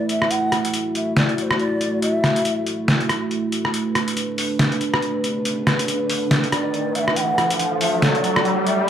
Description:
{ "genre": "deep dubstep", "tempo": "140 BPM", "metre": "4/4", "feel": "swing 58% on 16ths, half-time", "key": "unclear", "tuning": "A4 = 439 Hz", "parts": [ { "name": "breathy low ney", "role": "melody", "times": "0.0-2.6, 6.5-8.9 s", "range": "C5 to G5", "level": "-24 LUFS", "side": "equal", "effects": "dub echo" }, { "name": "dark analog pad", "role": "sustained chords", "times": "0.0-8.9 s", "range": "A3 to B4", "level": "-23 LUFS", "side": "right 1 dB", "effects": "chorus" }, { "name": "trip hop sampler-style drum kit", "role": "drums", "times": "0.1-8.8 s", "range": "hi-hat, rim click, snare drum", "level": "-21 LUFS", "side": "equal", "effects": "none" }, { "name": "riser", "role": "sound effects", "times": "5.2-8.9 s", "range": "none", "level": "-24 LUFS", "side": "left 1 dB", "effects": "none" } ], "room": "wet spring reverb, RT60 1.1 s, digital ambience", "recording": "vinyl crackle", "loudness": "-18 LUFS", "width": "side -9 dB against mid", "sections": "0.0-8.9 A section", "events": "build-up 0.0-8.9; riser 5.2-8.9", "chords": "0.0 A5" }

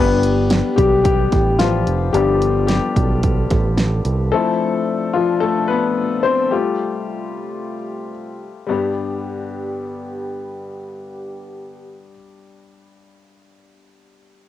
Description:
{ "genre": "piano-driven pop", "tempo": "110 BPM", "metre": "4/4", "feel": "straight", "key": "G mixolydian", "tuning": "A4 = 439 Hz", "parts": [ { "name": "clear concert grand piano", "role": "accompaniment", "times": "0.0-14.5 s", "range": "G2 to C5", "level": "-19 LUFS", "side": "left 5 dB", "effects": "none" }, { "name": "dark French horn section", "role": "sustained chords", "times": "0.0-12.1 s", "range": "C3 to A4", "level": "-28 LUFS", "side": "right 2 dB", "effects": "none" }, { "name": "fingered electric bass", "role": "bass", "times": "0.0-4.3 s", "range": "F1 to C2", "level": "-19 LUFS", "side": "right 2 dB", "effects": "none" }, { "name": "pop drum kit", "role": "drums", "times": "0.2-4.2 s", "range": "hi-hat, kick drum, snare drum", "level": "-20 LUFS", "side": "right 2 dB", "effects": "cassette tape" } ], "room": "light reverb", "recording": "home recording on cassette", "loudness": "-16 LUFS", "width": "side -12 dB against mid", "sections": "0.0-8.7 A section; 8.7-13.1 B section", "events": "grand piano solo 0.0-8.7", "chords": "0.0 G; 4.3 Dm7; 6.5 Fadd9; 8.7 G" }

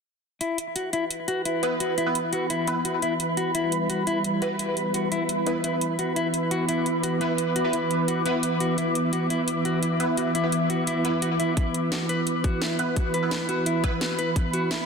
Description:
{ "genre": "dark technical drum and bass", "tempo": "172 BPM", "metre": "4/4", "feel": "straight", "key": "E minor", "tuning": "A4 = 443 Hz", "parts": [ { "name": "sweeping resonant pad", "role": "sustained chords", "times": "0.4-14.9 s", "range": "E3 to E5", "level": "-27 LUFS", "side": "right 1 dB", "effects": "chorus, sidechain pumping" }, { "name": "mellow electric guitar", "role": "arpeggios", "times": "0.4-14.9 s", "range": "E4 to B4", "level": "-29 LUFS", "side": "left 3 dB", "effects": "sidechain pumping, low-pass filter, ping-pong delay" }, { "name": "drum and bass drum kit", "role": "drums", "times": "0.4-14.8 s", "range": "hi-hat, snare drum", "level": "-30 LUFS", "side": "equal", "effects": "none" }, { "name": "ethereal airy pad", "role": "texture", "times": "0.9-14.9 s", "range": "E4 to D6", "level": "-29 LUFS", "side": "right 1 dB", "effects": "ensemble chorus, built-in reverb, sidechain pumping" }, { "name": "band-passed chord stab", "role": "stabs", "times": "1.6-13.9 s", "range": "B3 to B4", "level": "-31 LUFS", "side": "equal", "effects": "phaser, ensemble chorus, ping-pong delay" }, { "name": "electronic kick drum", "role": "drums", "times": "11.6-14.4 s", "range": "none", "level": "-25 LUFS", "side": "equal", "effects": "none" } ], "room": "moderate lush hall reverb, RT60 1.9 s", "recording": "dense, heavily limited modern master", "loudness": "-23 LUFS", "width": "side -5 dB against mid", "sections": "0.4-14.9 A section", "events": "filter sweep on synth stab 0.4-14.9", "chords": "0.4 E5" }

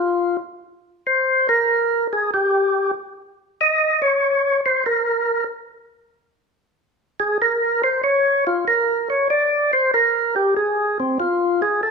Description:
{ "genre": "jazz", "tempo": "95 BPM", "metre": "4/4", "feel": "swing 69% on 8ths", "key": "unclear", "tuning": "A4 = 440 Hz", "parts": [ { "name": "percussive tonewheel organ", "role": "solo", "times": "0.0-11.9 s", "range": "C4 to Eb5", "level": "-17 LUFS", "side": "equal", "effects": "slow rotary speaker" } ], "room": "wet large studio reverb, RT60 1.2 s", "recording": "band playing live in one room", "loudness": "-17 LUFS", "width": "side -4 dB against mid", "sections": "0.0-11.9 A section", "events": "tonewheel organ solo 0.0-11.9", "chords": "none" }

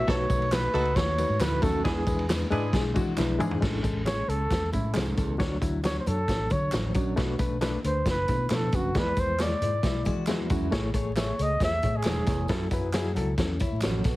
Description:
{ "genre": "uptempo 1960s-style soul", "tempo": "135 BPM", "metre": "4/4", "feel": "straight", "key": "A major", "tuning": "A4 = 441 Hz", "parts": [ { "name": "breathy trumpet", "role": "melody", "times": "0.0-12.6 s", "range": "E4 to E5", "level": "-30 LUFS", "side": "right 1 dB", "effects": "tape echo" }, { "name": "reed electric piano", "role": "accompaniment", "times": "0.0-14.2 s", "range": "F#3 to E5", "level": "-31 LUFS", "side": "left 3 dB", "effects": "overdrive, fast tremolo" }, { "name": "breathy baritone saxophone", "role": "riff", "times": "0.0-14.2 s", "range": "D2 to B2", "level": "-34 LUFS", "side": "right 4 dB", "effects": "none" }, { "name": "electric guitar at the edge of break-up", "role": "riff", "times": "0.0-0.1, 3.0-3.8, 9.8-10.7, 13.4-14.2 s", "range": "C#4 to F#4", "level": "-36 LUFS", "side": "left 7 dB", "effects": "none" }, { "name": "vintage muted fingered electric bass", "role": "bass", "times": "0.0-14.2 s", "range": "E1 to E3", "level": "-30 LUFS", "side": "equal", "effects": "none" }, { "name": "warm horn section", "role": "second line", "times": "0.1-2.8 s", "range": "D4 to A4", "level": "-34 LUFS", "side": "right 2 dB", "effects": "none" }, { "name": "vintage drum kit", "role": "drums", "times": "0.1-14.2 s", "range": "crash cymbal, hi-hat, kick drum, ride cymbal, snare drum, toms", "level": "-29 LUFS", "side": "equal", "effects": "none" }, { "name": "tambourine and handclaps", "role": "percussion", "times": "0.3-14.2 s", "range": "none", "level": "-43 LUFS", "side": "right 2 dB", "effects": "none" }, { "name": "congas", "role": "percussion", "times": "0.5-14.2 s", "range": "none", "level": "-38 LUFS", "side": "right 1 dB", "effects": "none" } ], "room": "studio ambience", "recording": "heavily compressed radio sound, multiband compression, vinyl crackle", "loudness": "-24 LUFS", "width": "side -18 dB against mid", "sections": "0.0-3.6 A section; 3.6-14.2 B section", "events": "drum fill 3.2-3.6; trumpet solo 3.6-14.2", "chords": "0.1 B7; 1.9 E7; 3.6 Amaj7; 5.4 Dmaj7; 7.2 Bm7; 8.9 E7; 10.7 Amaj7; 12.5 F#m7" }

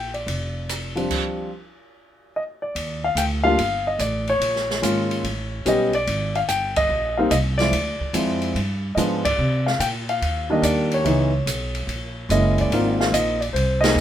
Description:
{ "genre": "jazz piano trio", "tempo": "145 BPM", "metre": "4/4", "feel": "swing 67% on 8ths", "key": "Eb major", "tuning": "A4 = 439 Hz", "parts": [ { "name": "dark grand piano", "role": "melody", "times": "0.0-14.0 s", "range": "Eb3 to G5", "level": "-21 LUFS", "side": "left 1 dB", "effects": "none" }, { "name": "upright bass", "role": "bass", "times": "0.0-14.0 s", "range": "F1 to C3", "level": "-25 LUFS", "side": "right 1 dB", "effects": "none" }, { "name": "open jazz drum kit", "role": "drums", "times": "0.1-14.0 s", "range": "crash cymbal, hi-hat, kick drum, ride cymbal, rim click, snare drum", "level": "-28 LUFS", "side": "right 1 dB", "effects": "none" } ], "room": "moderate club reverb, RT60 0.6 s", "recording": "minimal, uncompressed stereo recording", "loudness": "-20 LUFS", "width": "side -10 dB against mid", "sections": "0.0-2.8 A section; 2.8-14.0 B section", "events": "band accent 6.7, 9.2, 13.8", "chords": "0.0 Bb6 (rootless); 2.8 Ebmaj7; 4.4 Bbm7; 5.2 A9; 6.1 Abmaj9; 7.7 Dm7b5; 8.6 G7b9; 9.4 Cm7; 11.1 Dbm7; 11.9 Gb9; 12.7 Ab69" }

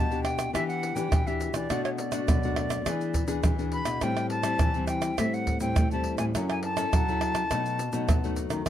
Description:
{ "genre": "samba and choro", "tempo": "103 BPM", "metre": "4/4", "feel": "straight", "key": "unclear", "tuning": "A4 = 438 Hz", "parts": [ { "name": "breathy silver concert flute", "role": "melody", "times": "0.0-8.3 s", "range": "C#5 to B5", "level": "-32 LUFS", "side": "left 1 dB", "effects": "none" }, { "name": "nylon-string guitar", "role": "accompaniment", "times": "0.0-8.6 s", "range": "F#2 to A4", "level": "-32 LUFS", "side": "left 5 dB", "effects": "none" }, { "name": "nylon-string guitar", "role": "bass", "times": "0.0-8.7 s", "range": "F#2 to B3", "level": "-32 LUFS", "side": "left 1 dB", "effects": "none" }, { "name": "egg shaker, pandeiro, tamborim and surdo", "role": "percussion", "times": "0.1-8.7 s", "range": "none", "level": "-28 LUFS", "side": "right 1 dB", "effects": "none" } ], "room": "light reverb", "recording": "dark, warm production", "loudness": "-25 LUFS", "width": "side -11 dB against mid", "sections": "0.0-8.7 A section", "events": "none", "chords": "0.0 Em7; 1.7 Bm7; 2.9 E7; 4.0 Am7; 6.3 F#m7; 7.5 B7" }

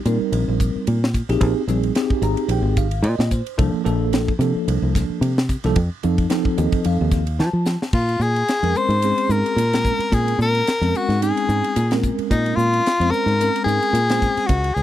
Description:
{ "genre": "electric jazz fusion", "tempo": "110 BPM", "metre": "4/4", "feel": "swing 55% on 16ths", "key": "Bb minor from 7.9 s", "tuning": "A4 = 437 Hz", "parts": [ { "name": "bell-like tine electric piano", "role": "accompaniment", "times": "0.1-14.5 s", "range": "F3 to Bb5", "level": "-23 LUFS", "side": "right 1 dB", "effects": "medium stereo tremolo, wide subtle chorus" }, { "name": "fingered electric bass", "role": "bass", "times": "0.1-14.8 s", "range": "Ab1 to F3", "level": "-20 LUFS", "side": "equal", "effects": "none" }, { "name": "crisp fusion drum kit", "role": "drums", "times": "0.1-14.8 s", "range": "crash cymbal, hi-hat, kick drum, ride cymbal, snare drum", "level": "-24 LUFS", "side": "equal", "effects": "none" }, { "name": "bright soprano saxophone", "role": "melody", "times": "7.9-14.8 s", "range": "Eb4 to C5", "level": "-20 LUFS", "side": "left 2 dB", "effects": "none" } ], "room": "little or no reverb", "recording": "dry, close 1970s-style studio recording", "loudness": "-17 LUFS", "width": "side -12 dB against mid", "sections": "0.0-7.9 A section; 7.9-14.8 B section", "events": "tine electric piano fill 2.0-3.6, 6.3-7.9; drum fill 7.4-7.9", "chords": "0.0 Bb13sus4; 3.6 C13sus4; 5.8 F7; 7.9 Bbm9" }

